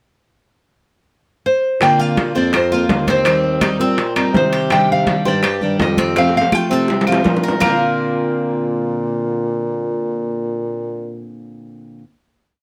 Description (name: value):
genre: latin, Cuban son and guajira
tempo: 165 BPM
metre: 4/4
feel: straight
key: Bb major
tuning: A4 = 441 Hz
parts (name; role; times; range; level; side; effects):
- nylon-string guitar; melody; 1.5-12.0 s; Bb4 to Bb5; -20 LUFS; equal; none
- picked steel-string acoustic guitar; accompaniment; 1.8-12.0 s; Bb2 to G4; -23 LUFS; equal; none
- dark bassoon; bass; 1.8-11.3 s; Eb2 to C3; -24 LUFS; equal; none
- bongos; percussion; 1.8-7.7 s; none; -28 LUFS; equal; none
- claves; percussion; 1.8-7.7 s; none; -26 LUFS; equal; none
- congas; percussion; 1.8-7.7 s; none; -25 LUFS; equal; none
- timbales; percussion; 1.8-7.7 s; none; -24 LUFS; equal; none
- Cuban tres; arpeggios; 2.0-12.0 s; Bb3 to C5; -25 LUFS; equal; none
room: light reverb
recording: none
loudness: -17 LUFS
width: mono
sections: 0.4-1.8 pickup bar; 1.8-7.6 verse; 7.6-10.5 final chord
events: drum fill 6.2-7.6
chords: 0.4 N.C.; 1.8 Bbadd9; 3.3 Eb6; 4.7 Cmadd9; 6.2 F; 7.6 Bbadd9